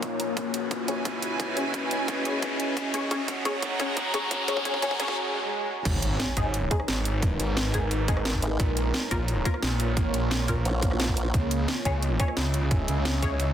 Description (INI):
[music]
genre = dark technical drum and bass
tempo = 175 BPM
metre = 4/4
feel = straight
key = G# minor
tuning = A4 = 440 Hz
[part]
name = deep dark ambient pad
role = sustained chords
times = 0.0-13.5 s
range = G#3 to A#5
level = -32 LUFS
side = equal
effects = chorus, built-in reverb, sidechain pumping
[part]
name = drum and bass drum kit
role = drums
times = 0.0-13.5 s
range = crash cymbal, hi-hat, rim click, snare drum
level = -31 LUFS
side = right 1 dB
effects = overdrive, small room reverb
[part]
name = electronic kick drum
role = drums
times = 0.0-13.3 s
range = none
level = -28 LUFS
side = equal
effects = overdrive, high-pass filter on kick, small room reverb
[part]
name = riser, swell and impact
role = sound effects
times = 0.0-7.2 s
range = none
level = -32 LUFS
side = equal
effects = none
[part]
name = dark studio string section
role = texture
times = 0.0-5.2 s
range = A#3 to A#5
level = -31 LUFS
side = equal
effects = sidechain pumping
[part]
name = filtered dub chord stab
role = stabs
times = 0.2-13.3 s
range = G#3 to C#5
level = -33 LUFS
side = left 2 dB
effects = phaser, ensemble chorus, tape echo
[part]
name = snarling distorted saw bass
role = bass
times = 5.9-13.5 s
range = G#1 to C#2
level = -27 LUFS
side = equal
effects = distortion, overdrive
[part]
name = formant-sweep wobble bass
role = bass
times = 8.4-8.6, 10.7-11.3 s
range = G#1 to A#1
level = -27 LUFS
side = equal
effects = chorus
[sound]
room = light reverb, digital ambience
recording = dense, heavily limited modern master, high-pass filter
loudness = -24 LUFS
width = side -10 dB against mid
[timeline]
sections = 0.0-5.9 A section; 5.9-13.5 B section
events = build-up 0.0-5.9; riser 0.0-5.2; filter sweep on synth stab 0.0-5.9; drum fill 0.4-5.2; break 5.2-5.9; swell 5.2-5.9; drop 5.9-13.5; impact 5.9-7.2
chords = 0.4 C#madd9; 3.1 F#; 5.9 G#m; 8.6 A#m; 11.3 C#madd9